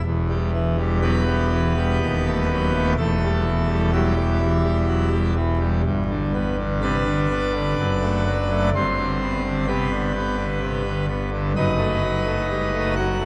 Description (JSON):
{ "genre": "classical, chorale-style piece for pipe organ", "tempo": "62 BPM", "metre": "3/4", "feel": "rubato", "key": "E minor", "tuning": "A4 = 442 Hz", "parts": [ { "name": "pipe organ, full organ", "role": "solo", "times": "0.0-13.3 s", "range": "D#1 to F#5", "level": "-22 LUFS", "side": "equal", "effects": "none" } ], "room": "wet cathedral reverb, RT60 4.3 s", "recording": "dark, warm production, vinyl crackle", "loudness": "-22 LUFS", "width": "mono", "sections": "0.0-13.3 A section", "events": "none", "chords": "0.0 Em; 2.0 B7/D#; 3.0 Em; 5.9 G; 7.8 D/F#; 8.7 G; 11.6 B7/F#" }